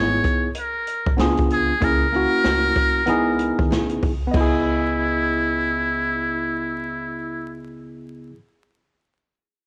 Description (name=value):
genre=hip hop, jazz-hop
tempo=95 BPM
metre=4/4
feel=swing 63% on 16ths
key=C# dorian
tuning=A4 = 440 Hz
part: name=trumpet with metal mute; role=melody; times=0.0-7.6 s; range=E4 to C#5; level=-25 LUFS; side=equal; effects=none
part: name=tine electric piano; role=accompaniment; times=0.0-8.4 s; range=A#3 to D#5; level=-26 LUFS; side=equal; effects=overdrive
part: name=upright bass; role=bass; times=0.0-8.3 s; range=G#1 to C#3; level=-32 LUFS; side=equal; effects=none
part: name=open jazz drum kit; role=drums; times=0.2-4.5 s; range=crash cymbal, hi-hat, kick drum, snare drum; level=-26 LUFS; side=equal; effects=vintage 12-bit sampler grit, cassette tape
room=light reverb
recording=home recording on cassette, vinyl crackle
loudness=-21 LUFS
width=mono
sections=0.0-4.3 A section; 4.3-6.9 B section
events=none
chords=0.0 C#m9; 1.2 C#7b9; 1.8 F#9/C#; 3.1 C#m9